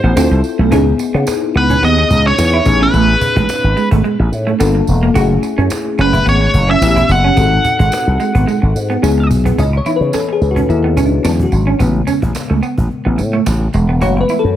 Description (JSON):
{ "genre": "polished 1980s jazz-funk pop", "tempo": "108 BPM", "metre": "4/4", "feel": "swing 54% on 16ths", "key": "C# minor", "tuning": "A4 = 441 Hz", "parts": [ { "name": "nasal lead guitar with a parked wah", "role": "melody", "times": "0.0-9.3 s", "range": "B4 to F#5", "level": "-16 LUFS", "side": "equal", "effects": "overdrive" }, { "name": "bell-like FM electric piano", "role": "accompaniment", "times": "0.0-14.6 s", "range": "C#3 to D#5", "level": "-18 LUFS", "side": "left 5 dB", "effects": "analog chorus" }, { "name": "electric guitar at the edge of break-up", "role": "riff", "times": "0.0-14.4 s", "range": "G#3 to F#4", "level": "-19 LUFS", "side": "right 6 dB", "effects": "lush chorus" }, { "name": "slap bass with an envelope filter", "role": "bass", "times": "0.0-14.5 s", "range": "E1 to C#3", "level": "-14 LUFS", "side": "equal", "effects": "none" }, { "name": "cajon", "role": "drums", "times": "0.0-14.5 s", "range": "none", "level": "-23 LUFS", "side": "equal", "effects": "none" }, { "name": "tambourine", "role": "percussion", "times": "0.2-14.4 s", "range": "none", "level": "-32 LUFS", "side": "right 7 dB", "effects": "none" } ], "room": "small room ambience", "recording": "none", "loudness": "-11 LUFS", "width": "side -11 dB against mid", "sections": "0.0-9.6 A section; 9.6-14.6 B section", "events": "drum fill 9.0-9.6; FM electric piano solo 9.6-14.6", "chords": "0.2 Dm9; 0.7 C#m9; 2.7 Amaj9#11; 4.6 Gm7; 5.2 F#m7; 6.8 A9; 7.4 G#7b9; 9.0 C#m9; 11.2 E13; 11.8 Amaj9; 14.0 F#m11" }